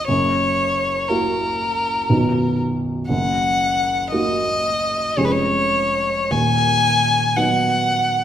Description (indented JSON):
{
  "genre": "classical, romantic duo for violin and grand piano",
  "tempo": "51-60 BPM",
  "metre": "3/4",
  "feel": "rubato",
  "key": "unclear",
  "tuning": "A4 = 438 Hz",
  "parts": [
    { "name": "rich violin", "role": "melody", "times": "0.0-8.2 s", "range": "Bb4 to Ab5", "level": "-19 LUFS", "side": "left 2 dB", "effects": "none" },
    { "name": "dark grand piano", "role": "accompaniment", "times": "0.0-8.2 s", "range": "B0 to Ab4", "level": "-21 LUFS", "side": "right 1 dB", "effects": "none" }
  ],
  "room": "wet recital hall reverb, RT60 1.5 s",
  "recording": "minimal, uncompressed stereo recording",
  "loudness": "-17 LUFS",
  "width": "side -10 dB against mid",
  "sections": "0.0-8.2 A section",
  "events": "none",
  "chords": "0.1 Gb7; 2.1 B; 3.1 Ebm/Gb; 5.2 Db/F; 6.3 B/D#",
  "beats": "| 0.08 1.09 2.09 | 3.09 4.12 5.16 | 6.30 7.36"
}